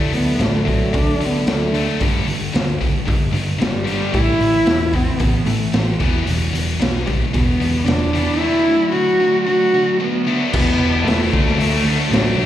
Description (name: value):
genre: quiet-loud alternative rock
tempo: 112 BPM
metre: 4/4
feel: straight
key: unclear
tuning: A4 = 440 Hz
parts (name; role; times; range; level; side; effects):
- fingerpicked plugged-in steel-string acoustic guitar; arpeggios; 0.0-2.0 s; D3 to D4; -23 LUFS; right 3 dB; none
- heavy high-gain guitar; riff; 0.0-12.5 s; G2 to E4; -24 LUFS; left 9 dB; distortion
- hollow-body short-scale picked electric bass; bass; 0.0-12.5 s; E1 to D3; -22 LUFS; equal; none
- warm cello; melody; 0.1-12.5 s; F#3 to F#4; -19 LUFS; equal; digital delay
- raw garage drum kit; drums; 0.1-12.3 s; crash cymbal, hi-hat, kick drum, snare drum; -21 LUFS; equal; none
- thick fuzz guitar; riff; 2.0-12.5 s; E2 to D4; -24 LUFS; right 8 dB; distortion
room: light reverb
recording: live gig heard through the venue's PA, recital hall reverb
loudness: -15 LUFS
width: side -12 dB against mid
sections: 0.0-10.5 A section; 10.5-12.5 B section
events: cello solo 0.0-10.5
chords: 0.0 D; 2.0 G5; 4.1 A5; 6.0 Em7; 8.4 D; 10.5 Em; 11.3 D